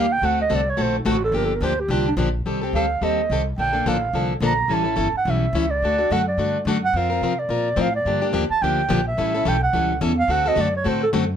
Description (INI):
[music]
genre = acoustic string swing (jazz manouche)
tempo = 214 BPM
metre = 4/4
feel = swing 56% on 8ths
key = unclear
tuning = A4 = 441 Hz
[part]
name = breathy clarinet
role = melody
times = 0.0-11.1 s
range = D4 to Bb5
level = -22 LUFS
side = right 3 dB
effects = none
[part]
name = picked plugged-in steel-string acoustic guitar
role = accompaniment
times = 0.0-11.2 s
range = D3 to Bb4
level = -23 LUFS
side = left 3 dB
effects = none
[part]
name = upright bass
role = bass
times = 0.0-11.4 s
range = G1 to C3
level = -26 LUFS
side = equal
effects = none
[sound]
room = light reverb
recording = none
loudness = -19 LUFS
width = side -8 dB against mid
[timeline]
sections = 0.0-2.5 A section; 2.5-11.4 A section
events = clarinet solo 0.0-11.4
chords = 0.2 D7; 1.3 Gm7; 2.5 Am7b5; 3.6 Bbmaj7; 4.7 A7; 5.8 D; 6.9 Fsus4; 8.1 Gm7; 9.2 A7; 10.3 D7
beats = | 0.22 0.50 0.78 1.06 | 1.34 1.62 1.90 2.18 | 2.46 2.74 3.02 3.30 | 3.58 3.86 4.14 4.42 | 4.70 4.98 5.26 5.54 | 5.82 6.10 6.38 6.66 | 6.94 7.22 7.50 7.78 | 8.06 8.34 8.62 8.90 | 9.18 9.46 9.74 10.02 | 10.30 10.58 10.86 11.14